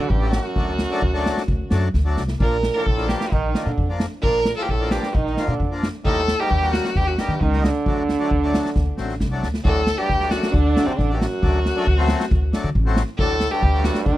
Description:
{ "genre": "klezmer", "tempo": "133 BPM", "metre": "4/4", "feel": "straight", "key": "D phrygian dominant", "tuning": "A4 = 438 Hz", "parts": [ { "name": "warm violin", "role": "melody", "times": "0.0-14.2 s", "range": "C4 to Bb4", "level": "-24 LUFS", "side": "equal", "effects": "none" }, { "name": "brilliant trombone", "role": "second line", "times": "0.0-14.2 s", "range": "F#2 to Eb3", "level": "-28 LUFS", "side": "right 6 dB", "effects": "none" }, { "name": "accordion", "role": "accompaniment", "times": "0.0-14.0 s", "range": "F3 to F#4", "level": "-27 LUFS", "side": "left 3 dB", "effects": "none" }, { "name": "upright bass", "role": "bass", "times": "0.0-14.2 s", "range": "A1 to Eb3", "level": "-22 LUFS", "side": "equal", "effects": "none" }, { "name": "street-band drum kit", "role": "drums", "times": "0.1-14.2 s", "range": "kick drum, snare drum", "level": "-23 LUFS", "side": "equal", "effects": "none" } ], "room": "small room reverb", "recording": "dry, close 1970s-style studio recording", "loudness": "-18 LUFS", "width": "side -15 dB against mid", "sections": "0.0-9.7 A section; 9.7-14.2 A section", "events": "speeding up 0.0-14.2; drum fill 1.9-2.4, 8.8-9.7", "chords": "0.0 D; 2.4 Bb; 6.1 Eb; 7.9 D" }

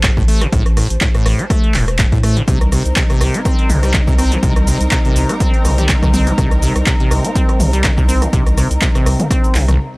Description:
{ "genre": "acid house", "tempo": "123 BPM", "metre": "4/4", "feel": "swing 55% on 16ths", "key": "unclear", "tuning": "A4 = 437 Hz", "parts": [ { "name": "acid bass, saw", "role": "riff", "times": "0.0-9.8 s", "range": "C2 to C4", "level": "-19 LUFS", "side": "equal", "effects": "tube saturation, lush chorus, cassette tape, sidechain pumping, tape echo" }, { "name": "saturated sub bass", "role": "bass", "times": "0.0-9.8 s", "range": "E1 to A2", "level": "-16 LUFS", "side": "equal", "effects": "sidechain pumping" }, { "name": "electronic kick drum", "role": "drums", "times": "0.0-9.4 s", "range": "none", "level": "-15 LUFS", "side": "equal", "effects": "overdrive" }, { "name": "punchy analog drum machine", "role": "drums", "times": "0.0-9.8 s", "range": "handclaps, hi-hat, rim click, shaker, toms", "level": "-20 LUFS", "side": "equal", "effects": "overdrive" }, { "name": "airy breathy pad", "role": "texture", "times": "0.0-9.8 s", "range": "Eb4 to Bb5", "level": "-29 LUFS", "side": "left 1 dB", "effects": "chorus, sidechain pumping" }, { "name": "muted studio string section", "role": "sustained chords", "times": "2.5-9.8 s", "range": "G3 to Bb4", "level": "-24 LUFS", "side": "equal", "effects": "sidechain pumping" } ], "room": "little or no reverb", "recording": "dry, gritty hardware recording", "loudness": "-12 LUFS", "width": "side -24 dB against mid", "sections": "0.0-10.0 A section", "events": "fade-in on analog synth pad 0.0-10.0; stop 9.8", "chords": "0.0 Am7; 2.5 Cm7" }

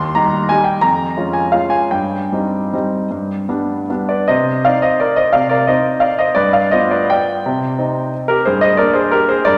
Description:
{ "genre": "classical, piano waltz", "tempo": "144-194 BPM", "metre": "3/4", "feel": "rubato", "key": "C minor", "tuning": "A4 = 439 Hz", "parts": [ { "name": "clear grand piano", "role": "solo", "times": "0.0-9.6 s", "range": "Eb2 to C6", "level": "-16 LUFS", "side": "equal", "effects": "none" } ], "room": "wet concert hall reverb, RT60 2.3 s", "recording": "none", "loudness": "-16 LUFS", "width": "mono", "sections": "0.0-4.3 A section; 4.3-9.6 B section", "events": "none", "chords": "0.0 Cm/Eb; 0.8 Db/F; 1.9 Cm/G; 3.1 G; 4.3 Cm; 6.4 G7; 7.4 Cm; 8.4 Gm" }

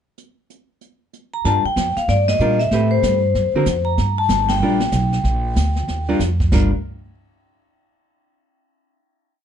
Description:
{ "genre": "jazz, small-group swing and bop", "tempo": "189 BPM", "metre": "4/4", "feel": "swing 63% on 8ths", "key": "G minor", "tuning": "A4 = 440 Hz", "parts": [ { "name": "jazz brush drum kit", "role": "drums", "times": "0.2-6.8 s", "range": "brushed snare drum, crash cymbal, hi-hat, kick drum, ride cymbal, snare drum", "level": "-24 LUFS", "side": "equal", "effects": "none" }, { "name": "vibraphone with medium mallets", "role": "melody", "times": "1.3-6.2 s", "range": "C5 to Bb5", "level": "-20 LUFS", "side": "left 2 dB", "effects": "none" }, { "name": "hollow-body jazz guitar", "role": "accompaniment", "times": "1.4-6.7 s", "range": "D3 to B4", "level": "-20 LUFS", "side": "equal", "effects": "none" }, { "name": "upright bass", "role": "bass", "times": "1.4-6.7 s", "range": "G1 to Bb2", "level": "-20 LUFS", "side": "right 1 dB", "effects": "none" } ], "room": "little or no reverb", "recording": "dark, warm production, nothing above 10.5 kHz", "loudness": "-16 LUFS", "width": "side -8 dB against mid", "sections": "0.2-1.4 pickup bar; 1.4-6.5 A section; 6.5-7.8 final chord", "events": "band accent 2.2, 4.5", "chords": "0.2 N.C.; 1.4 Gm7; 2.7 Am9; 3.4 D7alt; 4.0 Gm7" }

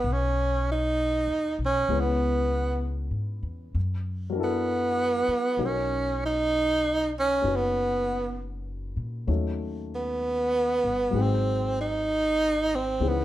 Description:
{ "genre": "jazz ballad", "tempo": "65 BPM", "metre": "4/4", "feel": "swing 67% on 8ths", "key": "G# minor", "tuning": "A4 = 440 Hz", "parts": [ { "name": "breathy tenor saxophone", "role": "melody", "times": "0.0-13.2 s", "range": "B3 to D#4", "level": "-25 LUFS", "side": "right 2 dB", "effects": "none" }, { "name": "dark baby grand piano", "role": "accompaniment", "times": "0.0-13.2 s", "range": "E3 to B4", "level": "-33 LUFS", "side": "left 6 dB", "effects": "none" }, { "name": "upright bass", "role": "bass", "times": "0.0-13.2 s", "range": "F#1 to A#2", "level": "-30 LUFS", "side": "left 1 dB", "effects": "none" } ], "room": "light reverb", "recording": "minimal, uncompressed stereo recording", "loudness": "-24 LUFS", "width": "side -14 dB against mid", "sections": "0.0-13.2 A section", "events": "tenor saxophone solo 0.0-13.2", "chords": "0.0 G#m9; 1.9 C#m7; 3.8 F#7alt; 5.6 Bmaj9; 9.3 D#m7b5; 11.1 G#7" }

